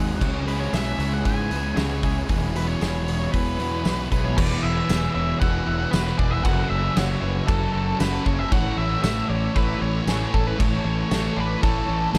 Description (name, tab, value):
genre	rock, shoegaze and dream pop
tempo	116 BPM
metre	4/4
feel	straight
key	A major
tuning	A4 = 442 Hz
part	twelve-string electric guitar	arpeggios	0.0-12.2 s	F#4 to D5	-38 LUFS	equal	ensemble chorus, analog delay
part	biting overdriven guitar	riff	0.0-4.4 s	E2 to G#4	-36 LUFS	equal	reverse reverb
part	thick fuzz guitar	riff	0.0-12.2 s	E2 to C#4	-29 LUFS	equal	distortion, analog chorus
part	fuzz fingered electric bass	bass	0.0-12.2 s	E1 to G#2	-29 LUFS	equal	overdrive
part	loose indie drum kit	drums	0.2-12.2 s	crash cymbal, hi-hat, kick drum, snare drum	-28 LUFS	equal	none
part	octave-fuzz lead guitar	melody	0.5-12.2 s	A4 to G#5	-31 LUFS	equal	distortion, analog delay
part	tambourine	percussion	0.7-12.2 s	none	-45 LUFS	equal	none
room	moderate huge ambient reverb, RT60 8.7 s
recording	dreamy mix soaked in reverb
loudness	-23 LUFS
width	mono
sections	0.0-4.4 A section; 4.4-12.2 B section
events	none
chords	0.2 C#m; 2.3 Eadd9; 6.5 F#m; 8.5 A